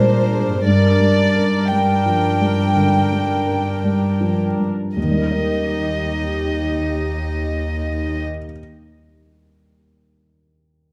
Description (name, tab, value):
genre	cinematic, emotional film score for orchestra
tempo	52-61 BPM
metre	4/4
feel	rubato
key	Eb major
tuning	A4 = 441 Hz
part	warm chamber violin section	melody	0.0-8.2 s	C5 to G5	-25 LUFS	equal	none
part	dark studio viola section	accompaniment	0.0-8.2 s	D4 to Bb4	-27 LUFS	equal	none
part	felt-muted upright piano	accompaniment	0.0-10.9 s	Eb2 to Eb5	-23 LUFS	equal	none
part	concert harp	arpeggios	0.0-8.9 s	G2 to Eb5	-30 LUFS	equal	none
part	warm studio cello section	bass	0.0-8.2 s	Eb2 to Bb2	-24 LUFS	equal	none
room	moderate scoring stage reverb, RT60 1.6 s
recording	close, detailed microphones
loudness	-19 LUFS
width	mono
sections	0.0-5.0 A section; 5.0-9.5 B section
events	slowing down 0.0-5.0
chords	0.0 Bb7; 0.7 Gm; 5.0 Eb